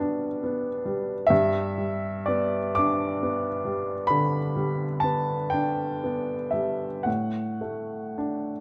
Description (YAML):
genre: classical, romantic nocturne for solo piano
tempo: 35-46 BPM (dotted quarters)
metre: 12/8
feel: rubato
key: unclear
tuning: A4 = 440 Hz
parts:
  - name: warm upright piano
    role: solo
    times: 0.0-8.6 s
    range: G2 to D6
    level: -27 LUFS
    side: equal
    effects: none
room: light reverb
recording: close, detailed microphones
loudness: -27 LUFS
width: mono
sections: 0.0-8.6 A section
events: none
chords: 0.0 G/B; 1.3 G; 7.1 D/A